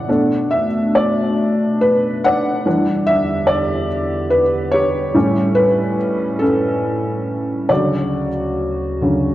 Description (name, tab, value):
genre	celtic folk, Celtic slow air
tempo	47 BPM (dotted quarters)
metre	6/8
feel	uneven beats, rubato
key	D major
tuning	A4 = 440 Hz
part	felt-muted upright piano	accompaniment	0.0-9.3 s	A2 to F#5	-16 LUFS	equal	none
part	warbly tape-like pad	sustained chords	0.0-9.3 s	D2 to G4	-23 LUFS	equal	chorus, built-in reverb
room	moderate scoring stage reverb, RT60 1.7 s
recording	worn, warbling old tape, cassette tape, warbly pitch drift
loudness	-15 LUFS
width	side -14 dB against mid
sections	0.0-9.3 A section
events	felt piano solo 0.0-9.3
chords	0.1 Bm7; 2.7 Em7; 5.2 A7; 7.7 Dmaj7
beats	| 0.08 1.39 | 2.66 3.90 | 5.15 6.40 | 7.69 9.01